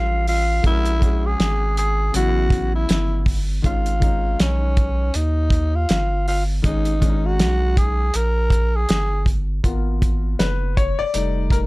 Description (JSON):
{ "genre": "hip hop, jazz-hop", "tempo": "80 BPM", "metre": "4/4", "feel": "swing 60% on 16ths", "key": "G# dorian", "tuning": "A4 = 440 Hz", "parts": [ { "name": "growling tenor saxophone", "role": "melody", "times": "0.0-9.3 s", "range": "C#4 to A#4", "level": "-23 LUFS", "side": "equal", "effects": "none" }, { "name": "dark grand piano", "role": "accompaniment", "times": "0.0-11.7 s", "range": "C#3 to D5", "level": "-27 LUFS", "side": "left 5 dB", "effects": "none" }, { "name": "saturated sub bass", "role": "bass", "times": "0.0-11.7 s", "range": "E#1 to D#2", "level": "-21 LUFS", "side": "equal", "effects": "none" }, { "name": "cloth-damped thuddy drum kit", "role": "drums", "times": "0.3-11.7 s", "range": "hi-hat, kick drum, snare drum", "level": "-20 LUFS", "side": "equal", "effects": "none" } ], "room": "little or no reverb", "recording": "none", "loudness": "-17 LUFS", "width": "side -21 dB against mid", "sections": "0.0-9.6 A section; 9.6-11.7 B section", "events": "grand piano solo 9.6-11.7", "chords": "0.0 F; 0.6 F#9; 2.1 A13; 3.6 G#m6; 9.6 G#m69; 11.1 F7" }